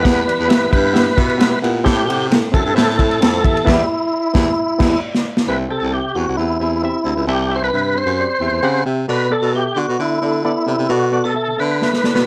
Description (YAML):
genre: uptempo 1960s-style soul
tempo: 133 BPM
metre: 4/4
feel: straight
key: unclear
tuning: A4 = 440 Hz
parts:
  - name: tonewheel organ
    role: melody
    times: 0.0-12.3 s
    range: E4 to C5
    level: -21 LUFS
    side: equal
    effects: chorus vibrato, fast rotary speaker, tube saturation
  - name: barky reed electric piano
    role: accompaniment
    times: 0.0-12.2 s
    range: A2 to G5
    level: -24 LUFS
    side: equal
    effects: overdrive, fast tremolo
  - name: warm baritone saxophone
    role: bass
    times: 0.1-12.2 s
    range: C2 to D3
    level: -23 LUFS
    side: equal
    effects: none
  - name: crunchy breakbeat drum kit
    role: drums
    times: 0.1-5.5, 11.8-12.3 s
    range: crash cymbal, kick drum, ride cymbal, snare drum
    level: -19 LUFS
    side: equal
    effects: none
room: studio reverb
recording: none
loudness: -17 LUFS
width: mono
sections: 0.0-5.5 A section; 5.5-12.3 B section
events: band accent 3.7-5.5; drum fill 4.6-5.5, 11.8-12.3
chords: 0.0 Em; 1.9 Am; 3.4 Em; 5.5 C; 9.1 Bm7